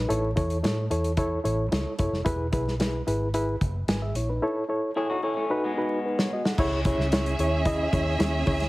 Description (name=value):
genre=uptempo 1960s-style soul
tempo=111 BPM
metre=4/4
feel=straight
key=unclear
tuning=A4 = 437 Hz
part: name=reed electric piano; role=accompaniment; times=0.0-8.7 s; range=D#4 to G#5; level=-27 LUFS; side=equal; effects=overdrive, fast tremolo
part: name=vintage muted fingered electric bass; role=bass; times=0.0-8.7 s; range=E1 to A2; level=-28 LUFS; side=equal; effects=none
part: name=natural country drum kit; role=drums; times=0.1-8.7 s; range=crash cymbal, hi-hat, kick drum, snare drum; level=-28 LUFS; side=equal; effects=none
part: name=electric guitar through a small old amp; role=riff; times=5.0-6.4 s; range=G#3 to G#4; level=-30 LUFS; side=left 2 dB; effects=spring reverb
part: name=warm symphonic violin section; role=second line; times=6.6-8.7 s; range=C#4 to E5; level=-29 LUFS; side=right 2 dB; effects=none
room=light reverb, small room ambience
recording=heavily compressed radio sound, vinyl crackle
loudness=-24 LUFS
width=side -19 dB against mid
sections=0.0-6.6 A section; 6.6-8.7 B section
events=drum fill 5.5-6.6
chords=0.1 A; 2.3 E; 4.4 A; 5.5 B; 6.6 C#m